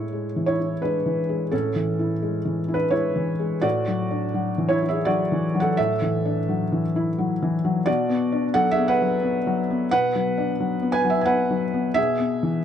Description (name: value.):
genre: neoclassical minimalist piano.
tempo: 86 BPM.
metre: 3/4.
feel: rubato.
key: A major.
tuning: A4 = 440 Hz.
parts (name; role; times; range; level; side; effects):
felt-muted upright piano; solo; 0.0-12.6 s; A2 to G#5; -20 LUFS; equal; none.
room: moderate plate reverb, RT60 3.2 s.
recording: dark, warm production.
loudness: -20 LUFS.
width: side -9 dB against mid.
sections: 0.0-12.6 A section.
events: none.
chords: 0.0 Amaj7; 3.6 Dadd9/A; 7.9 Bm; 12.0 E/B.